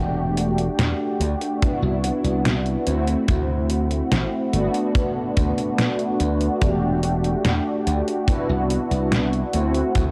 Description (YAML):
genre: vaporwave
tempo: 72 BPM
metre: 4/4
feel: straight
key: G major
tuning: A4 = 441 Hz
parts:
  - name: mellow synth brass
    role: accompaniment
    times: 0.0-10.1 s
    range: A3 to G4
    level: -25 LUFS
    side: equal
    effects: analog chorus, tape echo
  - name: slap bass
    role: bass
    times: 0.0-10.1 s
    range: E1 to E2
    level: -26 LUFS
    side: equal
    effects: none
  - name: detuned 8-bit digital drum machine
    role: drums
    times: 0.4-10.1 s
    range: hi-hat, snare drum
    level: -28 LUFS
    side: equal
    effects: overdrive
  - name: kick drum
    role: drums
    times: 1.6-10.1 s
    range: none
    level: -26 LUFS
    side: equal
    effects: none
room: studio reverb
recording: dry, gritty hardware recording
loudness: -22 LUFS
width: mono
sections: 0.0-10.1 A section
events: none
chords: 0.0 Em11; 1.6 Cmaj9#11; 2.9 D9; 4.5 Gmaj7 (rootless); 6.6 Em11; 8.3 Cmaj9#11; 9.5 D9